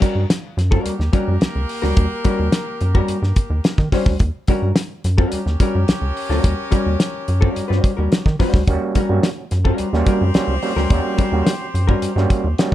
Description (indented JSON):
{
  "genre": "funk",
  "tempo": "107 BPM",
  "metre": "4/4",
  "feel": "straight",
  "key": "Eb mixolydian",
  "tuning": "A4 = 440 Hz",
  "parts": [
    { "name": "hollow-body jazz guitar", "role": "accompaniment", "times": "0.0-12.1 s", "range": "G3 to C5", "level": "-22 LUFS", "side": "left 2 dB", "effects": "none" },
    { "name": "damped 70s drum kit", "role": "drums", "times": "0.0-12.7 s", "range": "hi-hat, kick drum, snare drum", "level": "-18 LUFS", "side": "equal", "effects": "none" },
    { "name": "rubbery square bass", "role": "bass", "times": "0.2-12.7 s", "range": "Db2 to Eb3", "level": "-19 LUFS", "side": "equal", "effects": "none" },
    { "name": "clear horn section", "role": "second line", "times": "0.9-12.7 s", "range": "Bb3 to Db5", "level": "-28 LUFS", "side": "left 1 dB", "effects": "none" },
    { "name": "overdriven clav", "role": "stabs", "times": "8.7-12.7 s", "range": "G3 to F#4", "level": "-22 LUFS", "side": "right 4 dB", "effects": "auto-wah" }
  ],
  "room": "light reverb",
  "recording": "dark, warm production",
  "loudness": "-16 LUFS",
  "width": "side -13 dB against mid",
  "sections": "0.0-12.7 A section",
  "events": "none",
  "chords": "0.0 Eb7#9"
}